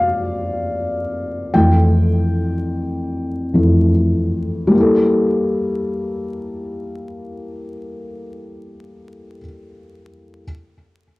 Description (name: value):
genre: hip hop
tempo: free time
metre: none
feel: none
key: G dorian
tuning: A4 = 440 Hz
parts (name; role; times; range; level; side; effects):
- felt-muted upright piano; solo; 0.0-10.5 s; F2 to G5; -16 LUFS; left 1 dB; cassette tape, analog delay
room: wet studio reverb, RT60 0.6 s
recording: home recording on cassette, vinyl crackle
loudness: -15 LUFS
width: side -21 dB against mid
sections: 0.0-4.7 A section; 4.7-7.9 B section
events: felt piano solo 0.0-4.7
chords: 0.0 C7sus4; 1.5 Fmaj9; 4.7 Gm69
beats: free time